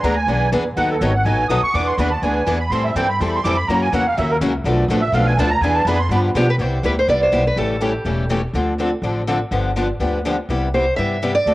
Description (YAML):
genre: acoustic string swing (jazz manouche)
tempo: 247 BPM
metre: 4/4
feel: swing 55% on 8ths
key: C major from 6.6 s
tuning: A4 = 440 Hz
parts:
  - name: musette accordion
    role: second line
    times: 0.0-6.2 s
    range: A4 to D#6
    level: -20 LUFS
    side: right 2 dB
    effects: cassette tape
  - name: picked steel-string acoustic guitar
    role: accompaniment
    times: 0.0-11.5 s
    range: B2 to A4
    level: -22 LUFS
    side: left 3 dB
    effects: cassette tape
  - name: picked steel-string acoustic guitar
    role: accompaniment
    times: 0.0-11.5 s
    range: B2 to B4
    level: -26 LUFS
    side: right 2 dB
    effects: cassette tape
  - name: upright bass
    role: bass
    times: 0.0-11.5 s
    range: E1 to B2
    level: -21 LUFS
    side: equal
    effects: none
  - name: picked steel-string acoustic guitar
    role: melody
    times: 6.4-8.3, 10.7-11.5 s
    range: G4 to E5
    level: -19 LUFS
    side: equal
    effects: cassette tape
room: moderate spring reverb, RT60 2.6 s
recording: home recording on cassette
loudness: -16 LUFS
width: side -17 dB against mid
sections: 0.0-6.6 A section; 6.6-11.5 B section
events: accordion solo 0.0-6.6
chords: 0.0 E7; 0.8 B7; 1.7 E7; 2.7 Am7; 3.7 F#7; 4.7 Bm7b5; 5.6 E7; 6.1 G7; 6.6 Cmaj7; 7.6 A7; 8.5 Dm7; 9.5 G7; 10.5 Cmaj7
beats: 0.04 0.28 0.53 | 0.77 1.01 1.26 1.50 | 1.74 1.99 2.23 2.47 | 2.72 2.96 3.20 3.45 | 3.69 3.93 4.17 4.42 | 4.66 4.90 5.14 5.39 | 5.63 5.87 6.12 6.36 | 6.60 6.84 7.09 7.33 | 7.57 7.82 8.06 8.30 | 8.55 8.79 9.03 9.28 | 9.52 9.76 10.01 10.25 | 10.49 10.74 10.98 11.22 | 11.47